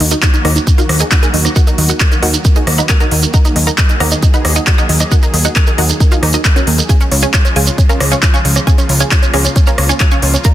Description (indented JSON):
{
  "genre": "uplifting trance",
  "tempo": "135 BPM",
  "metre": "4/4",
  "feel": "straight",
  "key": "Eb minor",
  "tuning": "A4 = 441 Hz",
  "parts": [
    { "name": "wide unison pluck", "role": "melody", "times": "0.0-10.5 s", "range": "Db4 to Eb6", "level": "-20 LUFS", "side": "right 1 dB", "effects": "sidechain pumping, ping-pong delay" },
    { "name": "supersaw pad", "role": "sustained chords", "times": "0.0-10.5 s", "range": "Db3 to Ab4", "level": "-23 LUFS", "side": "equal", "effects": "sidechain pumping, low-pass filter" },
    { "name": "analog pluck", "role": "arpeggios", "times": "0.0-10.5 s", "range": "Eb3 to Eb5", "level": "-24 LUFS", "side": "right 3 dB", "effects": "chorus, sidechain pumping, ping-pong delay" },
    { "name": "plucky analog bass", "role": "bass", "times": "0.0-10.4 s", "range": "Db2 to Eb2", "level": "-14 LUFS", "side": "equal", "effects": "sidechain pumping" },
    { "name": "big-room dance drum kit", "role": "drums", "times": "0.0-10.5 s", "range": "handclaps, hi-hat, rim click", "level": "-16 LUFS", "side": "equal", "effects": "sidechain pumping on hats" },
    { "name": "shekere", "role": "percussion", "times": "0.1-10.5 s", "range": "none", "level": "-21 LUFS", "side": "right 6 dB", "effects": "none" },
    { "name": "electronic kick drum", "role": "drums", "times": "0.2-10.5 s", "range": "none", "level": "-10 LUFS", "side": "equal", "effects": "none" }
  ],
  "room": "little or no reverb",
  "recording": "dense, heavily limited modern master",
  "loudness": "-9 LUFS",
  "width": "side -13 dB against mid",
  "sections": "0.0-10.5 A section",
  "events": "filter sweep on supersaw synth 0.0-10.5",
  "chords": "0.0 Ebm; 6.9 Db"
}